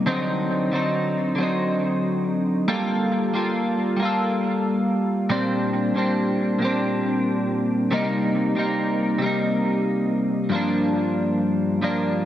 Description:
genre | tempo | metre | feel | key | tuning
indie pop | 92 BPM | 4/4 | swing 60% on 16ths | G minor | A4 = 440 Hz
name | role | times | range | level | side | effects
twelve-string electric guitar | solo | 0.0-12.3 s | G2 to A4 | -20 LUFS | equal | analog chorus, warbly pitch drift, analog delay
room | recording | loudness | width
moderate spring reverb, RT60 2.1 s | echo-heavy mix | -20 LUFS | side -11 dB against mid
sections
0.0-10.5 A section; 10.5-12.3 B section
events
none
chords
0.1 D7b9; 2.7 Gm9; 5.3 Bb69; 7.9 Cm7; 10.5 Gm7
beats
| 0.07 0.73 1.38 2.03 | 2.68 3.33 3.99 4.64 | 5.29 5.94 6.60 7.25 | 7.90 8.55 9.21 9.86 | 10.51 11.16 11.81

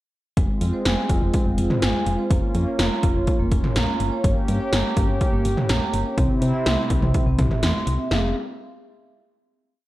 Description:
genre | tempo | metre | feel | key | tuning
synth-pop | 124 BPM | 4/4 | straight | F harmonic minor | A4 = 435 Hz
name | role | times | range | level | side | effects
brassy analog pad | sustained chords | 0.4-8.1 s | C3 to G4 | -27 LUFS | equal | chorus
vibraphone with soft mallets | arpeggios | 0.4-8.3 s | Ab3 to C6 | -27 LUFS | right 2 dB | tape echo
solid FM bass | bass | 0.4-8.3 s | F1 to C3 | -23 LUFS | equal | none
80s electronic pad drums | drums | 0.4-8.2 s | hi-hat, kick drum, snare drum, toms | -22 LUFS | equal | gated reverb on snare and toms
room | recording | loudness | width
moderate plate reverb, RT60 1.7 s | dark, warm production | -19 LUFS | side -16 dB against mid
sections
0.4-8.1 verse; 8.1-9.9 final chord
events
none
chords
0.4 Fm; 2.3 Bbm/F; 4.2 Gdim; 6.2 C; 8.1 Fm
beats
| 0.37 0.85 1.34 1.82 | 2.31 2.79 3.27 3.76 | 4.24 4.72 5.21 5.69 | 6.18 6.66 7.14 7.63 | 8.11

